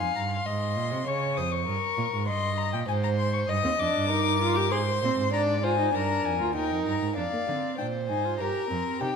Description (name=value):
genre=classical, baroque-style fugue for string quartet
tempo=98 BPM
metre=3/4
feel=straight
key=Ab major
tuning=A4 = 440 Hz
part: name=warm violin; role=melody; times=0.0-9.2 s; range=F5 to Eb6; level=-30 LUFS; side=left 9 dB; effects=none
part: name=dark violin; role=second line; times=0.0-9.2 s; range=G4 to F5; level=-30 LUFS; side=left 1 dB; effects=none
part: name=rich cello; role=bass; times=0.0-9.1 s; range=D2 to D3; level=-30 LUFS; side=right 4 dB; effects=none
part: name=warm viola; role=accompaniment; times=3.6-9.2 s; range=Bb3 to Ab4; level=-30 LUFS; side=right 3 dB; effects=none
room=moderate scoring stage reverb, RT60 2.0 s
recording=none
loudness=-24 LUFS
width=side -6 dB against mid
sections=0.0-7.2 A section; 7.2-9.2 B section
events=none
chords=0.0 Ab; 1.1 Db; 1.7 Eb7/G; 2.9 Ab; 3.5 Eb; 4.7 Ab; 5.3 Bb7/Ab; 6.6 Eb; 7.2 Ddim; 8.4 Gm